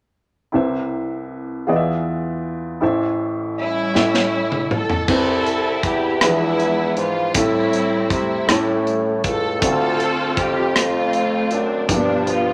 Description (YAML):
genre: slow gospel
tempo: 53 BPM (dotted quarters)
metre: 6/8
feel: straight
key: C major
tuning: A4 = 440 Hz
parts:
  - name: warm baby grand piano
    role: accompaniment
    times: 0.5-12.5 s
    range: A1 to E5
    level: -24 LUFS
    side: equal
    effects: none
  - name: warm studio string section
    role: melody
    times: 3.6-12.5 s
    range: F3 to A4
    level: -24 LUFS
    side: equal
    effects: none
  - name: modern studio drum kit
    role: drums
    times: 4.0-12.4 s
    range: crash cymbal, hi-hat, kick drum, rim click, snare drum, toms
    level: -24 LUFS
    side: equal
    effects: none
  - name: warm bassoon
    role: bass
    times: 5.1-12.5 s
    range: C2 to C3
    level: -24 LUFS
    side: equal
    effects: none
room: moderate large studio reverb, RT60 1.2 s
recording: none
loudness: -20 LUFS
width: mono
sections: 0.5-5.1 A section; 5.1-12.5 B section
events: drum fill 3.9-5.1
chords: 0.5 Cmaj7; 1.7 E7b9; 2.8 Am7; 3.9 A7; 5.1 Cmaj7; 6.2 E7b9; 7.4 Am7; 8.5 A7; 9.6 Dm7; 11.9 G7